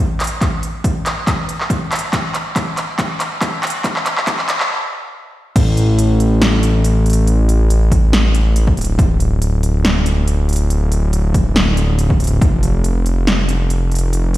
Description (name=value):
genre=future bass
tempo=140 BPM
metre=4/4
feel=swing 54% on 16ths, half-time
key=unclear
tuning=A4 = 438 Hz
part: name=big-room dance drum kit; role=drums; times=0.2-14.4 s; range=crash cymbal, handclaps, hi-hat, snare drum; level=-19 LUFS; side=equal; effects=overdrive, high-pass filter on snare, high-pass filter on hats, high-pass filter on cymbals, high-pass filter on room
part: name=electronic kick drum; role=drums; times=0.4-12.5 s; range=none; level=-17 LUFS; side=equal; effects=overdrive
part: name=fat analog bass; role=bass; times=5.6-14.4 s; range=D1 to A1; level=-14 LUFS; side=equal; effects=sidechain pumping
room=light reverb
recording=played on a big sound system in a bare room, stone room reverb, high-pass filter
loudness=-13 LUFS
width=side -16 dB against mid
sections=0.0-5.6 A section; 5.6-14.4 B section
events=build-up 0.0-5.6; drum fill 0.0-4.7; filter sweep 0.0-5.6; stop 4.7-5.6; drop 5.6-14.4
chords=none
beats=| 0.42 0.84 1.27 1.70 | 2.13 2.56 2.99 3.42 | 3.84 4.27 4.70 5.13 | 5.56 5.99 6.42 6.84 | 7.27 7.70 8.13 8.56 | 8.99 9.42 9.84 10.27 | 10.70 11.13 11.56 11.99 | 12.42 12.84 13.27 13.70 | 14.13